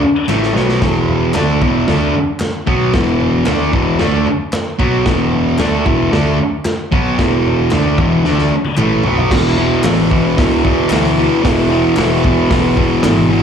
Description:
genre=garage rock duo or trio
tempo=113 BPM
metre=4/4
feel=straight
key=unclear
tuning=A4 = 440 Hz
part: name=crunchy breakbeat drum kit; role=drums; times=0.0-13.2 s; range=crash cymbal, hi-hat, kick drum, snare drum, toms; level=-18 LUFS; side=equal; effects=none
part: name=thick fuzz guitar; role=riff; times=0.3-13.4 s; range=E2 to D4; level=-13 LUFS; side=equal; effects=distortion, slapback echo
part: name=growling picked electric bass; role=bass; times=0.3-13.4 s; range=E1 to D2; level=-20 LUFS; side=equal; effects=overdrive
part: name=group handclap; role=percussion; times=0.3-13.2 s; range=none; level=-30 LUFS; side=left 2 dB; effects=none
room=light reverb, studio reverb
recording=live gig heard through the venue's PA, club reverb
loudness=-12 LUFS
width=side -7 dB against mid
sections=0.0-9.3 A section; 9.3-13.4 B section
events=drum fill 0.3-0.8, 8.2-9.3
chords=0.0 E5

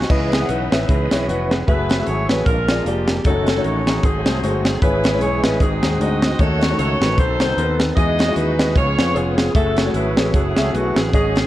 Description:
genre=uptempo gospel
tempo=152 BPM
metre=4/4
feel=swing 57% on 8ths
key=C# minor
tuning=A4 = 440 Hz
part: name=bright saxophone section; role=melody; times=0.0-11.5 s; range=B3 to D#5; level=-22 LUFS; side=equal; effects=none
part: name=bright grand piano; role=accompaniment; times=0.0-11.5 s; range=G#2 to G#5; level=-23 LUFS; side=left 2 dB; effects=none
part: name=tonewheel organ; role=sustained chords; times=0.0-11.5 s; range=D3 to D#5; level=-27 LUFS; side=right 2 dB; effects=slow rotary speaker, overdrive, chorus vibrato
part: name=fingered electric bass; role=bass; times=0.0-11.5 s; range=E#1 to E#2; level=-23 LUFS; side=equal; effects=none
part: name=crisp fusion drum kit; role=drums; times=0.0-11.4 s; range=crash cymbal, hi-hat, kick drum, snare drum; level=-19 LUFS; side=equal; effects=none
room=light reverb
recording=worn, warbling old tape, cassette tape, warbly pitch drift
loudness=-15 LUFS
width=side -14 dB against mid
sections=0.1-11.5 A section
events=none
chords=0.1 C#m9; 1.7 F#m9; 2.5 A#7; 3.2 D#m7b5/F#; 4.0 G#7b9; 4.8 C#m/G#; 5.6 G#7; 6.4 D#m7b5; 7.2 B7b9; 8.0 Emaj9; 8.8 C#7; 9.6 F#m9

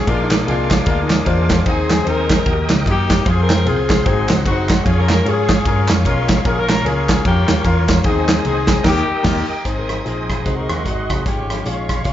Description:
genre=uptempo gospel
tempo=150 BPM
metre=4/4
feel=swing 60% on 8ths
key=Ab major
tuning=A4 = 443 Hz
part: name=bright saxophone section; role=melody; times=0.0-12.1 s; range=Ab3 to Bb4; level=-22 LUFS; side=left 3 dB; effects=slapback echo
part: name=bright tonewheel organ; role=sustained chords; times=0.0-12.1 s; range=Ab3 to Eb6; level=-27 LUFS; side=right 3 dB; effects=slow rotary speaker, chorus vibrato
part: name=warm grand piano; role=accompaniment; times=0.1-12.1 s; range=Ab2 to Eb5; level=-23 LUFS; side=left 4 dB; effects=slapback echo
part: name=hollow-body short-scale fingered electric bass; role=bass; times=0.1-12.1 s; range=Gb1 to Ab2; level=-20 LUFS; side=equal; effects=none
part: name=modern studio drum kit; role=drums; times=0.1-12.1 s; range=crash cymbal, hi-hat, kick drum, ride cymbal, rim click, snare drum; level=-18 LUFS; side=right 1 dB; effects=none
part: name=group handclap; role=percussion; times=0.3-8.8 s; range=none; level=-26 LUFS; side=right 1 dB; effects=none
part: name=warm studio string section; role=sustained chords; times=9.6-12.1 s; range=Db5 to Eb6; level=-35 LUFS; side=right 1 dB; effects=none
room=light reverb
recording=live gig heard through the venue's PA, club reverb, nothing above 7.6 kHz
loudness=-14 LUFS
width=side -12 dB against mid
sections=0.0-9.6 A section; 9.6-12.1 B section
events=band accent 8.8-9.6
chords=0.1 Bb7; 1.7 Ab/Eb; 2.5 Eb; 3.3 Fm; 4.1 Ab7; 4.9 Db/F; 6.5 Bbm; 8.0 Ab/Eb; 8.8 Eb; 9.6 Ab; 10.5 Ab7/C; 11.3 Db/Ab

